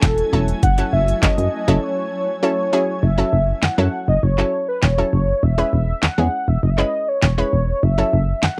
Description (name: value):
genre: dance-pop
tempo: 100 BPM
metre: 4/4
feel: straight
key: F# dorian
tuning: A4 = 440 Hz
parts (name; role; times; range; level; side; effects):
- warm velvety synth lead; melody; 0.0-8.6 s; A4 to F#5; -24 LUFS; equal; chorus, slapback echo
- analog pluck; accompaniment; 0.0-8.4 s; F#3 to B4; -26 LUFS; equal; chorus, sidechain pumping
- shimmering ambient pad; sustained chords; 0.0-3.0 s; F#3 to G#5; -33 LUFS; equal; chorus, built-in reverb, sidechain pumping
- solid FM bass; bass; 0.0-8.5 s; E1 to F#2; -20 LUFS; equal; sidechain pumping
- pop drum kit; drums; 0.0-8.6 s; handclaps, hi-hat, kick drum, snare drum; -21 LUFS; equal; none
room: light reverb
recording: dry, close 1970s-style studio recording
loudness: -19 LUFS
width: mono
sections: 0.0-3.0 A section; 3.0-8.6 B section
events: break 1.8-3.0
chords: 0.0 F#m7; 5.4 C#m7/E; 7.8 F#m7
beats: 0.03 | 0.63 1.23 1.83 2.43 | 3.03 3.63 4.23 4.83 | 5.43 6.03 6.63 7.23 | 7.83 8.43